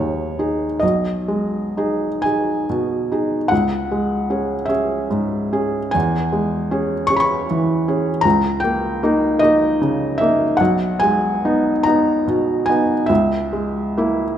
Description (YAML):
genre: classical, romantic nocturne for solo piano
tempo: 40-54 BPM (dotted quarters)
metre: 6/8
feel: rubato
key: G# minor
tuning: A4 = 438 Hz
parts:
  - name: felt-muted upright piano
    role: solo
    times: 0.0-14.4 s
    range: G#1 to C#6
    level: -16 LUFS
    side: equal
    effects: none
room: moderate recital hall reverb, RT60 1.6 s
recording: none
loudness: -16 LUFS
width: side -10 dB against mid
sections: 0.0-14.4 A section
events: none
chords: 0.0 G#m; 0.8 G#m/B; 3.5 C#m; 5.9 C#m/E; 8.3 D#7/C#; 10.6 G#m/B; 13.1 A#m7b5/C#